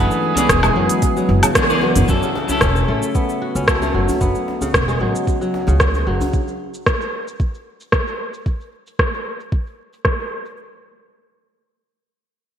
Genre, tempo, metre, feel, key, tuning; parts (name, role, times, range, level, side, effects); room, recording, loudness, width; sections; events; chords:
organic downtempo; 113 BPM; 4/4; straight; F# minor; A4 = 440 Hz
warm kamancheh; melody; 0.0-1.6 s; G#4; -23 LUFS; right 5 dB; digital delay
clean electric guitar; accompaniment; 0.0-4.2 s; E3 to D5; -22 LUFS; left 2 dB; sidechain pumping, low-pass filter, digital delay
warm analog pad; sustained chords; 0.2-2.1 s; G#3 to B4; -27 LUFS; equal; chorus, sidechain pumping
kora; arpeggios; 0.0-6.4 s; C#3 to F#4; -22 LUFS; equal; vintage 12-bit sampler grit, digital delay
upright bass; bass; 0.0-6.2 s; E1 to C#2; -19 LUFS; equal; tube saturation, sidechain pumping
organic electronic drum kit; drums; 0.1-10.6 s; hi-hat, rim click, shaker, woodblock; -20 LUFS; equal; low-pass filter on hats, low-pass filter on perc, low-pass filter on snare, low-pass filter on room, gated reverb
djembe; percussion; 0.2-6.3 s; -29 LUFS; left 1 dB
electronic kick drum; drums; 0.5-10.2 s; -20 LUFS; equal
wet lush hall reverb, RT60 1.8 s, small room ambience; bright 1980s-style digital production; -16 LUFS; side -9 dB against mid
0.0-2.1 A section; 2.1-10.6 B section; 10.6-12.6 C section
band accent 1.6; filter sweep on drum 2.1-10.6; filter sweep on clean electric guitar 2.1-4.2
0.0 E7; 2.1 F#m7; 6.3 N.C.